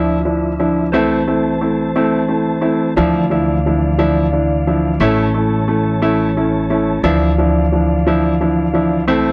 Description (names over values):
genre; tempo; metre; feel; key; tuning
six-eight pop ballad; 59 BPM (dotted quarters); 6/8; straight; D minor; A4 = 438 Hz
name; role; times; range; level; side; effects
dark baby grand piano; accompaniment; 0.0-9.3 s; F3 to E4; -17 LUFS; equal; none
percussive tonewheel organ; sustained chords; 0.0-9.3 s; E3 to A5; -24 LUFS; equal; fast rotary speaker
upright bass; bass; 0.0-9.3 s; A1 to D2; -22 LUFS; equal; none
room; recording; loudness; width
light reverb; dry, close 1970s-style studio recording; -16 LUFS; mono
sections
0.0-9.3 A section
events
none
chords
0.0 Dmadd9; 0.9 Am/C; 3.0 Dmadd9; 5.0 A; 7.0 Dmadd9